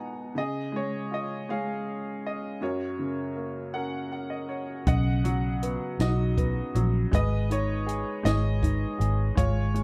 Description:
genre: acoustic folk-pop ballad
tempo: 53 BPM (dotted quarters)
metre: 6/8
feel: straight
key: B major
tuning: A4 = 439 Hz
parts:
  - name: bright upright piano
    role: melody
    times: 0.0-9.8 s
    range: F#2 to A#5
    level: -32 LUFS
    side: equal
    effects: plate reverb
  - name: vintage muted fingered electric bass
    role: bass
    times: 4.9-9.8 s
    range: G#1 to B1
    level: -28 LUFS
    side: equal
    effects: none
  - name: compact cocktail drum kit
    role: drums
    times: 4.9-9.8 s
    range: hi-hat, kick drum, snare drum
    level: -30 LUFS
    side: equal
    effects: none
room: light reverb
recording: dark, warm production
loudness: -28 LUFS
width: mono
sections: 0.0-4.9 A section; 4.9-9.8 B section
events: upright piano fill 3.7-4.9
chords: 0.4 C#; 2.6 F#; 4.9 Badd9; 7.1 G#m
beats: | 0.36 1.48 | 2.61 3.73 | 4.87 6.00 | 7.12 8.24 | 9.37

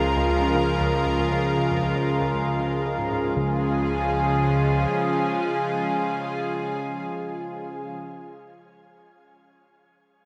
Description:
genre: ambient, sequencer-driven space music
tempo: 117 BPM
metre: 4/4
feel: straight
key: Db major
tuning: A4 = 440 Hz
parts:
  - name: lush unison pad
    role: sustained chords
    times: 0.0-8.0 s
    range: Db3 to Bb4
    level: -26 LUFS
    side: equal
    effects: chorus, shimmer reverb
  - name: hollow square pluck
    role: riff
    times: 0.0-3.6 s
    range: Db2 to F3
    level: -35 LUFS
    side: equal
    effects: none
  - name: fat analog bass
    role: bass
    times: 0.0-4.9 s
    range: Db2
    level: -29 LUFS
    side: equal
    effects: none
room: wet plate reverb, RT60 3.2 s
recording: echo-heavy mix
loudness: -24 LUFS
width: mono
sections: 0.0-3.4 A section; 3.4-7.5 B section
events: none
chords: 0.0 Db6; 3.4 Db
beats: 0.29 0.80 | 1.32 1.83 2.34 2.85 | 3.37 3.88 4.39 4.91 | 5.42 5.93 6.44 6.96

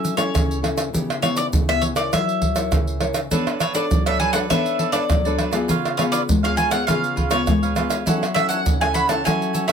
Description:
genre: samba and choro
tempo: 101 BPM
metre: 4/4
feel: straight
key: unclear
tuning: A4 = 441 Hz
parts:
  - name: bowl-back mandolin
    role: melody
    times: 0.0-9.7 s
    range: C#5 to B5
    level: -23 LUFS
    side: equal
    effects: none
  - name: nylon-string guitar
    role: accompaniment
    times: 0.0-9.7 s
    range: C#3 to C#5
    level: -24 LUFS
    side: left 3 dB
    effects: none
  - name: egg shaker, pandeiro, tamborim and surdo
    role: percussion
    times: 0.0-9.7 s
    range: none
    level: -21 LUFS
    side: right 1 dB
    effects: none
  - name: cavaquinho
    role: accompaniment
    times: 3.3-9.7 s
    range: D4 to F#5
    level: -27 LUFS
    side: right 7 dB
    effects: none
room: light reverb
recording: close, detailed microphones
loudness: -18 LUFS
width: side -7 dB against mid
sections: 0.0-9.7 A section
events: none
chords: 0.0 F#m7; 0.9 C#m7b5; 2.1 F#7; 3.3 Bm9; 5.7 C#7; 8.1 F#m7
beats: 0.34 | 0.93 1.53 2.12 2.72 | 3.31 3.91 4.50 5.10 | 5.69 6.29 6.88 7.47 | 8.07 8.66 9.26

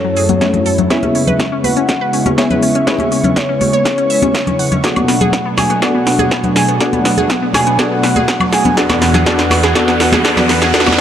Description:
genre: progressive house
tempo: 122 BPM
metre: 4/4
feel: straight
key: unclear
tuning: A4 = 440 Hz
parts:
  - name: soft octave-layered synth lead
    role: melody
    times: 0.0-11.0 s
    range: C#5 to G#5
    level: -18 LUFS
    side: equal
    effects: chorus, tremolo, sidechain pumping, dub echo
  - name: warm analog pad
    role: sustained chords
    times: 0.0-11.0 s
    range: E2 to C#6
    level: -18 LUFS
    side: right 1 dB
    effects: chorus, vintage 12-bit sampler grit, sidechain pumping
  - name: glassy wavetable pluck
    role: arpeggios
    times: 0.0-11.0 s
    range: F#3 to F#5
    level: -19 LUFS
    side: left 1 dB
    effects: chorus, sidechain pumping, dub echo
  - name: wide unison pluck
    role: stabs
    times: 0.0-11.0 s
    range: A3 to D5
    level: -18 LUFS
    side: left 2 dB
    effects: sidechain pumping
  - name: deep house drum kit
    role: drums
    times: 0.2-11.0 s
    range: hi-hat, snare drum, woodblock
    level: -18 LUFS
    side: right 1 dB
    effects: high-pass filter on snare, sidechain pumping on hats, high-pass filter on hats, sidechain pumping on perc, high-pass filter on perc, high-pass filter on room
  - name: congas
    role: percussion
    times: 0.3-11.0 s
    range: none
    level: -20 LUFS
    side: left 2 dB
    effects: sidechain pumping on perc
  - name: electronic kick drum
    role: drums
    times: 0.4-10.8 s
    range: none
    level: -24 LUFS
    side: right 1 dB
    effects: none
  - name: riser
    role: sound effects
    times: 7.4-11.0 s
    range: none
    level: -23 LUFS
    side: right 1 dB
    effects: none
room: moderate lush hall reverb, RT60 2.4 s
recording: dark, warm production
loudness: -11 LUFS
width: side -9 dB against mid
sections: 0.0-11.0 A section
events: build-up 0.0-11.0; drum fill 0.0-11.0; riser 7.4-11.0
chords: 0.0 F#m7; 0.9 C#m7; 4.8 Bm7; 8.8 Esus2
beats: 0.41 | 0.90 1.40 1.89 2.38 | 2.87 3.36 3.85 4.35 | 4.84 5.33 5.82 6.31 | 6.81 7.30 7.79 8.28 | 8.77 9.27 9.76 10.25 | 10.74

